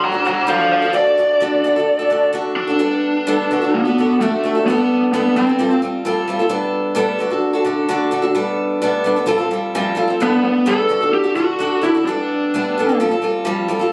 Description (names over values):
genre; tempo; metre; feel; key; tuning
rock; 129 BPM; 4/4; straight; G major; A4 = 440 Hz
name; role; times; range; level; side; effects
lead guitar through a small cranked amp; melody; 0.0-5.8, 10.2-13.0 s; A3 to Bb5; -18 LUFS; equal; overdrive
picked old ladder-braced acoustic guitar; accompaniment; 0.0-13.9 s; D3 to A4; -20 LUFS; equal; none
room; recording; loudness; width
light reverb, small room ambience; recorded on a phone in the room, club reverb, compression; -17 LUFS; mono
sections
0.0-2.8 A section; 2.8-13.9 B section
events
lead electric guitar solo 0.0-2.8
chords
0.0 D; 2.8 Gadd9; 3.5 D; 4.7 Gadd9; 5.6 Fadd9; 6.5 Gadd9; 7.2 D; 8.4 Gadd9; 9.3 Fadd9; 10.2 Gadd9; 10.9 D; 12.1 Gadd9; 13.0 Fadd9